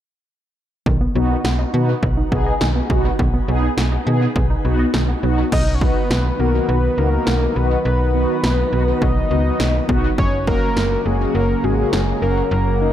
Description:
synth-pop; 103 BPM; 4/4; straight; A4 = 440 Hz
analog pluck; arpeggios; 0.9-5.5 s; D#3 to D#5; -28 LUFS; right 2 dB; chorus, dub echo, shimmer reverb
slap-like FM bass; bass; 0.9-12.9 s; F#1 to B2; -20 LUFS; equal
punchy analog drum machine; drums; 0.9-12.1 s; crash cymbal, kick drum, snare drum; -22 LUFS; equal; overdrive, dub echo
mellow synth brass; accompaniment; 1.2-12.9 s; A#3 to G#4; -22 LUFS; left 1 dB; chorus, phaser, dub echo, shimmer reverb
fat analog lead; melody; 5.5-12.9 s; G#4 to D#5; -22 LUFS; left 1 dB; dub echo, shimmer reverb
lush unison pad; sustained chords; 6.1-12.9 s; C#3 to B3; -26 LUFS; equal; chorus, shimmer reverb
light reverb, digital ambience; echo-heavy mix; -16 LUFS; side -11 dB against mid
0.9-5.5 A section; 5.5-12.9 B section
0.9 B; 10.2 F#
| 0.86 1.45 2.03 2.61 | 3.19 3.77 4.36 4.94 | 5.52 6.11 6.69 7.27 | 7.85 8.44 9.02 9.60 | 10.18 10.77 11.35 11.93 | 12.51

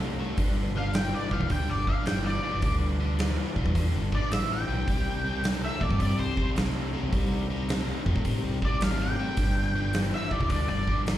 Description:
blues rock power trio and southern rock; 107 BPM; 4/4; swing 66% on 8ths; G mixolydian; A4 = 440 Hz
overdriven tonewheel organ; sustained chords; 0.0-11.2 s; G3 to B4; -41 LUFS; right 2 dB; slow rotary speaker, chorus vibrato
biting overdriven guitar; riff; 0.0-11.2 s; G2 to A3; -32 LUFS; left 1 dB; slapback echo
overdriven fingered electric bass; bass; 0.0-11.2 s; F1 to A2; -29 LUFS; equal
huge arena drum kit; drums; 0.4-11.2 s; hi-hat, kick drum, snare drum; -30 LUFS; equal
octave-fuzz lead guitar; melody; 0.8-11.0 s; C5 to G5; -32 LUFS; left 1 dB; wah, distortion, slapback echo, tape echo
light reverb, small room ambience; live gig heard through the venue's PA, club reverb; -25 LUFS; side -13 dB against mid
0.0-11.2 A section
0.4 G7; 4.9 C7; 7.1 Cm7; 9.4 G7
| 0.39 0.95 1.51 2.07 | 2.63 3.19 3.75 4.31 | 4.87 5.44 6.00 6.56 | 7.12 7.69 8.25 8.81 | 9.38 9.94 10.51 11.07

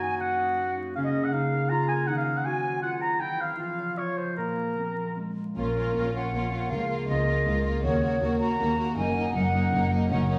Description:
classical, dramatic, fast romantic movement for symphony orchestra; 159 BPM; 3/4; rubato; Bb minor; A4 = 439 Hz
clear clarinet; second line; 0.0-5.6 s; Ab3 to Gb4; -35 LUFS; equal
silver concert flute; second line; 0.0-10.2 s; Bb4 to Bb5; -33 LUFS; equal
warm oboe; second line; 0.0-5.2 s; Bb4 to Bb5; -32 LUFS; equal
concert harp; arpeggios; 0.0-10.4 s; Gb2 to Eb5; -34 LUFS; equal
dark symphonic violin section; melody; 5.6-10.4 s; Bb4; -40 LUFS; equal
rich studio violin section; second line; 5.6-10.4 s; Eb4 to Gb4; -39 LUFS; equal
warm symphonic viola section; accompaniment; 5.6-10.4 s; Bb3 to Db4; -35 LUFS; equal
rich studio double bass section; bass; 5.6-10.4 s; Gb1 to Eb2; -33 LUFS; equal
warm symphonic cello section; bass; 5.6-10.4 s; Db2 to Bb2; -33 LUFS; equal
wet recital hall reverb, RT60 1.3 s; recorded in a church or concert hall, vinyl crackle; -27 LUFS; mono
0.0-5.6 A section; 5.6-10.4 A section
0.0 Ebm/Gb; 0.9 Bbm/Db; 2.1 Cdim/Eb; 3.2 C/E; 3.6 Db/F; 4.0 F5; 4.4 Bb5; 5.6 Bbm; 6.7 Bbm/Db; 7.8 Ebm; 9.0 Ebm/Gb
0.20 0.57 | 0.95 1.32 1.70 | 2.07 2.45 2.82 | 3.20 3.58 3.97 | 4.36 4.77 5.17 | 5.57 5.95 6.33 | 6.71 7.08 7.46 | 7.84 8.22 8.59 | 8.97 9.35 9.73 | 10.11

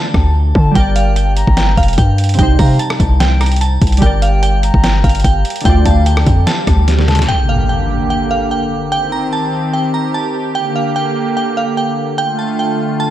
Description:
hip hop, trap; 147 BPM; 4/4; half-time; G minor; A4 = 440 Hz
glassy synth bell; melody; 0.0-13.1 s; F5 to Bb5; -19 LUFS; right 1 dB; chorus, diffuse ambient delay
glassy digital keys; accompaniment; 0.0-7.3 s; C3 to D5; -20 LUFS; right 2 dB; chorus
hard-hitting 808-style bass; bass; 0.1-7.3 s; F1 to D3; -12 LUFS; equal
lo-fi sampler-style drum kit; drums; 0.1-7.3 s; hi-hat, kick drum, rim click, snare drum; -15 LUFS; equal; overdrive
reedy baroque flute; second line; 0.6-7.3 s; F5 to Bb5; -26 LUFS; left 3 dB; diffuse ambient delay
swell and impact; sound effects; 6.0-8.9 s; -20 LUFS; equal
warm analog pad; sustained chords; 7.3-13.1 s; D3 to G4; -17 LUFS; right 1 dB; chorus
light reverb, digital ambience; -11 LUFS; side -12 dB against mid
0.0-7.3 A section; 7.3-13.1 B section
break 0.0-0.8; swell 6.0-7.3; drum fill 6.9-7.3; impact 7.3-8.9
0.0 Dm; 0.8 Gm; 2.4 Cm; 4.0 Gm; 5.7 Dm; 7.3 Gm; 8.9 Cm; 10.6 Gm; 12.2 Dm
0.35 | 0.76 1.16 1.57 1.98 | 2.39 2.79 3.20 3.61 | 4.02 4.43 4.84 5.24 | 5.65 6.06 6.47 6.88 | 7.29 7.69 8.10 8.51 | 8.92 9.33 9.73 10.14 | 10.55 10.96 11.37 11.78 | 12.18 12.59 13.00

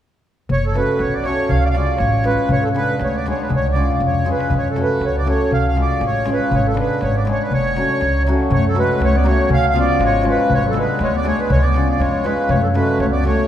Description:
balkan folk, Balkan wedding band; 120 BPM; 2/4; swing 55% on 16ths; F# harmonic minor; A4 = 440 Hz
accordion; melody; 0.5-13.5 s; A4 to E#5; -21 LUFS; right 2 dB; light tremolo tuning
upright bass; bass; 0.5-13.3 s; F#1 to F#2; -20 LUFS; equal
darbuka; percussion; 0.5-13.5 s; -24 LUFS; left 1 dB
hammered dulcimer; accompaniment; 0.7-13.5 s; E#3 to A4; -20 LUFS; left 1 dB
clear clarinet; second line; 8.5-13.5 s; F#3 to C#4; -23 LUFS; left 4 dB
wet recital hall reverb, RT60 1.8 s; heard from further back in the room; -15 LUFS; side -10 dB against mid
0.5-8.5 A section; 8.5-13.5 A section
drum fill 3.9-4.5
0.5 F#m; 1.5 C#; 2.5 G#dim; 3.5 C#; 4.5 F#m; 5.5 C#; 6.5 G#dim; 7.5 F#m; 9.5 C#; 10.5 G#dim; 11.5 C#; 12.5 F#m
| 0.50 1.00 | 1.50 2.00 | 2.50 3.01 | 3.51 4.01 | 4.51 5.01 | 5.51 6.01 | 6.51 7.01 | 7.51 8.01 | 8.51 9.01 | 9.51 10.01 | 10.51 11.00 | 11.50 12.00 | 12.50 12.99

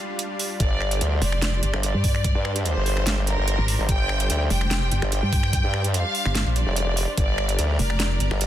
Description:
heavy wobble dubstep; 146 BPM; 4/4; half-time; G minor; A4 = 441 Hz
lush unison pad; sustained chords; 0.0-8.5 s; G3 to C5; -32 LUFS; equal; chorus, sidechain pumping
dubstep drum kit; drums; 0.2-8.5 s; finger snaps, hi-hat, snare drum; -28 LUFS; right 2 dB; small room ambience
warm studio violin section; melody; 0.6-8.5 s; Bb4 to G5; -28 LUFS; equal; digital delay
formant-sweep wobble bass; bass; 0.6-8.5 s; F1 to G2; -23 LUFS; equal; chorus, overdrive
electronic kick drum; drums; 0.6-7.3 s; -23 LUFS; equal; small room ambience
pulsing pluck wobble bass; bass; 1.2-8.3 s; F1 to G2; -23 LUFS; equal; chorus, overdrive
digital ambience; dense, heavily limited modern master, faint mains hum; -20 LUFS; side -12 dB against mid
0.0-8.5 A section
0.0 G5
0.19 | 0.60 1.01 1.42 1.83 | 2.24 2.65 3.07 3.48 | 3.89 4.30 4.71 5.12 | 5.53 5.94 6.35 6.76 | 7.17 7.59 8.00 8.41

